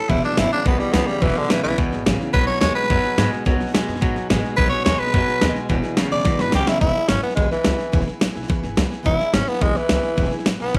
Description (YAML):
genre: rockabilly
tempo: 214 BPM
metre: 4/4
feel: straight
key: E major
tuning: A4 = 440 Hz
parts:
  - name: growling tenor saxophone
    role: melody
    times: 0.0-10.8 s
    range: D3 to D5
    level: -24 LUFS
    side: equal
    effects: none
  - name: picked steel-string acoustic guitar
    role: accompaniment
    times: 0.0-10.8 s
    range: C#3 to B4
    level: -32 LUFS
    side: equal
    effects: none
  - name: twangy electric guitar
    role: riff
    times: 0.1-6.8 s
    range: E2 to G#3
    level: -27 LUFS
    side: equal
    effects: none
  - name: upright bass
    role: bass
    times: 0.1-10.8 s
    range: E1 to G#2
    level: -28 LUFS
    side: equal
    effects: none
  - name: dubstep drum kit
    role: drums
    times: 0.1-10.8 s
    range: hi-hat, kick drum, snare drum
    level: -24 LUFS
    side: equal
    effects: none
room: light reverb, small room ambience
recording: none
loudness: -20 LUFS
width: mono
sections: 0.0-6.8 A section; 6.8-10.8 B section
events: tenor saxophone solo 0.0-6.8; drum fill 6.3-6.8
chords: 0.1 E6; 2.3 B6; 5.7 E6